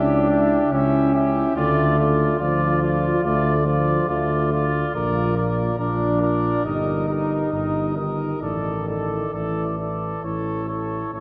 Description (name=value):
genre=classical, brass quintet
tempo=65-72 BPM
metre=4/4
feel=rubato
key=D minor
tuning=A4 = 440 Hz
part: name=mellow trumpet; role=melody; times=0.0-11.2 s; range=C#5 to E5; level=-29 LUFS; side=equal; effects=none
part: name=clear trumpet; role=second line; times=0.0-11.2 s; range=F4 to Bb4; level=-32 LUFS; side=equal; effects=none
part: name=mellow French horn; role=accompaniment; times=0.0-11.2 s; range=E4 to G4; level=-32 LUFS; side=equal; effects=none
part: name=mellow trombone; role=accompaniment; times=0.0-11.1 s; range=Eb3 to Eb4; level=-26 LUFS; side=equal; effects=none
part: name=dark tuba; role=bass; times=0.0-11.2 s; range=G1 to D2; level=-26 LUFS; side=equal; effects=none
room=wet church reverb, RT60 3.1 s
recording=none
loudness=-22 LUFS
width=mono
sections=0.0-11.2 A section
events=none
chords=0.0 A7/C# (rootless); 1.6 Dm; 4.9 Bb; 6.7 Eb/G; 8.4 Asus4; 10.2 A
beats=0.72 | 1.56 2.41 3.25 4.10 | 4.95 5.79 6.65 7.53 | 8.42 9.34 10.25 11.14